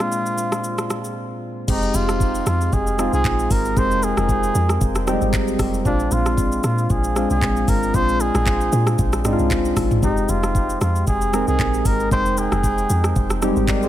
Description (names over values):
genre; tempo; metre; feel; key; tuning
amapiano; 115 BPM; 4/4; swing 55% on 16ths; F dorian; A4 = 436 Hz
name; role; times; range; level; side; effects
trumpet with cup mute; melody; 0.0-13.4 s; D4 to C5; -24 LUFS; right 1 dB; digital delay
soft electric-piano-like synth keys; accompaniment; 0.0-13.9 s; Bb2 to G5; -22 LUFS; equal; chorus
smooth R&B drum kit; drums; 0.0-13.9 s; crash cymbal, handclaps, hi-hat, kick drum, rim click, shaker, toms; -23 LUFS; equal; none
deep log drum bass; bass; 1.7-13.9 s; F1 to Bb2; -22 LUFS; equal; none
room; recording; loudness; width
digital ambience; none; -17 LUFS; side -12 dB against mid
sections
0.0-1.7 A section; 1.7-13.9 B section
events
break 1.2-1.7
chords
0.0 Bb7; 1.7 Fm9; 5.9 Bb7; 10.0 Fm9